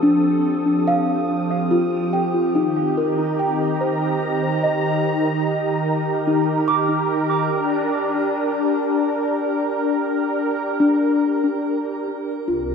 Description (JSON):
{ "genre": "ambient", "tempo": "72 BPM", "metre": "3/4", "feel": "straight", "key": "unclear", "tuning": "A4 = 439 Hz", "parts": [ { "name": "warm analog pad", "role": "sustained chords", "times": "0.0-12.7 s", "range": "C3 to Eb6", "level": "-20 LUFS", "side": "equal", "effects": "chorus, shimmer reverb" }, { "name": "small celesta", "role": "arpeggios", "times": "0.0-12.7 s", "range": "D4 to D6", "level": "-21 LUFS", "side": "left 1 dB", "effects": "analog delay, shimmer reverb" }, { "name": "warm sub bass", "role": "bass", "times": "12.5-12.7 s", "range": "C2", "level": "-32 LUFS", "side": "equal", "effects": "none" } ], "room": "wet spring reverb, RT60 2.7 s", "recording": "echo-heavy mix", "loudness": "-18 LUFS", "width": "side -6 dB against mid", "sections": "0.0-12.5 A section", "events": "fade-in on analog synth pad 0.0-12.5", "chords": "0.0 F7; 2.5 Eb; 7.5 Gm" }